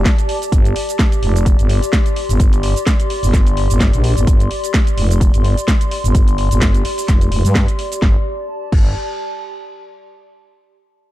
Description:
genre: bass house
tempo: 128 BPM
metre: 4/4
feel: swing 55% on 16ths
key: unclear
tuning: A4 = 440 Hz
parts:
  - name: growling FM bass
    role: bass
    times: 0.0-8.9 s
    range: F1 to G2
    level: -15 LUFS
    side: equal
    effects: tube saturation, sidechain pumping
  - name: warbly tape-like pad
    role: texture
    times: 0.0-9.9 s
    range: G4 to C6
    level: -23 LUFS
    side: left 1 dB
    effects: chorus, built-in reverb, sidechain pumping
  - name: electronic kick drum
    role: drums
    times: 0.1-8.8 s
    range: none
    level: -14 LUFS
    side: equal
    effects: none
  - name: garage drum kit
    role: drums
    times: 0.1-8.8 s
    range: crash cymbal, hi-hat, shaker, snare drum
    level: -22 LUFS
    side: equal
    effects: none
room: little or no reverb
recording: dark, warm production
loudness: -13 LUFS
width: side -15 dB against mid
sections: 0.0-8.0 A section; 8.0-9.9 B section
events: filter sweep on FM bass 0.0-8.0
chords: 0.0 G5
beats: 0.05 | 0.52 0.99 1.46 1.93 | 2.40 2.87 3.33 3.80 | 4.27 4.74 5.21 5.68 | 6.15 6.62 7.08 7.55 | 8.02 8.49 8.96 9.43

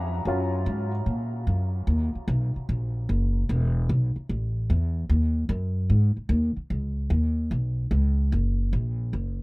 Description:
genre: jazz, big band swing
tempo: 149 BPM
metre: 4/4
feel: swing 67% on 8ths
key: Eb minor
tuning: A4 = 440 Hz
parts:
  - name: upright bass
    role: bass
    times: 0.0-9.4 s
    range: E1 to Bb2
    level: -23 LUFS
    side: equal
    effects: none
  - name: warm baby grand piano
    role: accompaniment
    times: 0.3-0.9 s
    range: Gb3 to F4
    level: -32 LUFS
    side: left 1 dB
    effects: none
room: small room ambience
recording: none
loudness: -23 LUFS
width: side -24 dB against mid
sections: 0.0-1.9 A section; 1.9-9.4 B section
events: grand piano solo 0.0-1.9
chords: 0.0 Ebm7 (rootless); 1.9 Ebm; 3.5 E5; 4.3 A5; 5.1 Ebmadd11; 6.7 Dbsus2; 8.3 Gb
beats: | 0.27 0.67 1.07 1.48 | 1.88 2.28 2.69 3.09 | 3.49 3.89 4.30 4.70 | 5.10 5.51 5.91 6.31 | 6.71 7.12 7.52 7.92 | 8.33 8.73 9.13

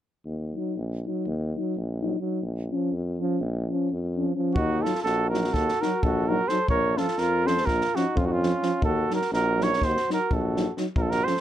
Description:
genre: balkan folk, Balkan brass band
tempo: 253 BPM (eighths)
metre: 9/8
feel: straight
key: Eb dorian sharp4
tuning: A4 = 440 Hz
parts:
  - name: clear tuba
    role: bass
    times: 0.3-11.2 s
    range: Bb1 to F2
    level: -28 LUFS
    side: left 1 dB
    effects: none
  - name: mellow euphonium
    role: accompaniment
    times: 0.5-11.3 s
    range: F3 to Gb3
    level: -31 LUFS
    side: right 6 dB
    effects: none
  - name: dark euphonium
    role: accompaniment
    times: 0.6-11.3 s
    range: Db4 to Eb4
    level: -29 LUFS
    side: left 5 dB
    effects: none
  - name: mellow cornet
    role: melody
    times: 4.5-11.4 s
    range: F4 to Db5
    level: -26 LUFS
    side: right 4 dB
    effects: none
  - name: mellow flugelhorn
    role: second line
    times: 4.6-11.4 s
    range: Db4 to Bb4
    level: -31 LUFS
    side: left 6 dB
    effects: none
  - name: compact cocktail drum kit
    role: percussion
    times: 4.6-11.4 s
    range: kick drum, snare drum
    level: -30 LUFS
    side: left 1 dB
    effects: none
room: little or no reverb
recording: close, detailed microphones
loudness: -23 LUFS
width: side -11 dB against mid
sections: 0.3-4.6 A section; 4.6-11.4 B section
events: none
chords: 0.3 Ebm; 2.4 Bbm; 4.6 Ebm; 6.7 Bbm; 8.8 Ebm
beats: | 0.27 0.51 0.75 0.99 1.23 1.46 1.70 1.94 2.18 | 2.42 2.66 2.89 3.13 3.37 3.61 3.85 4.08 4.32 | 4.56 4.80 5.03 5.27 5.51 5.75 5.98 6.22 6.46 | 6.69 6.93 7.17 7.41 7.64 7.88 8.12 8.35 8.59 | 8.83 9.06 9.30 9.54 9.77 10.01 10.25 10.48 10.72 | 10.96 11.20

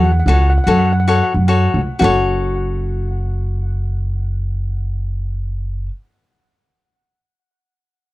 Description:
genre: calypso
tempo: 111 BPM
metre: 4/4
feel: straight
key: F# minor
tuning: A4 = 440 Hz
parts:
  - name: steel pan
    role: melody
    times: 0.0-5.9 s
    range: F#5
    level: -24 LUFS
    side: equal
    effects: tape echo
  - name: cavaquinho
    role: accompaniment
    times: 0.0-5.9 s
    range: F#4 to C#5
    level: -18 LUFS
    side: left 4 dB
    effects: none
  - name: upright bass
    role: bass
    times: 0.0-5.9 s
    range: F#1 to F#2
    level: -16 LUFS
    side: equal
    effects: none
room: studio ambience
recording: dry, close 1970s-style studio recording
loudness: -15 LUFS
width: side -18 dB against mid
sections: 0.0-2.0 A section; 2.0-6.3 B section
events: none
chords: 0.0 F#m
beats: 0.40 0.94 1.48 | 2.01 2.55 3.09 3.63 | 4.17 4.71 5.25 5.78

